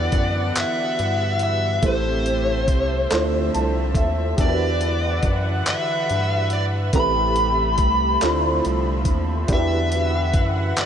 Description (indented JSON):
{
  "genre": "slow six-eight R&B",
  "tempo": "47 BPM (dotted quarters)",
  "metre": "6/8",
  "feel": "straight",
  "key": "E minor",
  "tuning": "A4 = 443 Hz",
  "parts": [
    { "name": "smooth overdriven lead guitar", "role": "melody", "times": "0.0-10.9 s", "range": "C5 to B5", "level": "-23 LUFS", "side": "left 1 dB", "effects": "diffuse ambient delay" },
    { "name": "warm grand piano", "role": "accompaniment", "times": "0.0-10.9 s", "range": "A3 to A5", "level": "-26 LUFS", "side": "right 2 dB", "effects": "ensemble chorus" },
    { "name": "warm studio string section", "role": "sustained chords", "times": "0.0-10.9 s", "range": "C3 to F#5", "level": "-28 LUFS", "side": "equal", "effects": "none" },
    { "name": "rubbery square bass", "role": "bass", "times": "0.0-10.9 s", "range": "A1 to G2", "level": "-24 LUFS", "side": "equal", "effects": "none" },
    { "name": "dusty soul sampler-style drum kit", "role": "drums", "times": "0.1-10.9 s", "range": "handclaps, hi-hat, kick drum", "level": "-24 LUFS", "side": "equal", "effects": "none" }
  ],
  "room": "moderate huge ambient reverb, RT60 6.3 s",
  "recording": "dreamy mix soaked in reverb",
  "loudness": "-18 LUFS",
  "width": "side -8 dB against mid",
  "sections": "0.0-10.9 A section",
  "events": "grand piano fill 3.1-4.4",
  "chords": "0.0 Em9; 1.8 Am7; 3.1 Dm9; 4.4 Em9; 6.9 Am9; 8.2 Dm9; 9.5 Em9"
}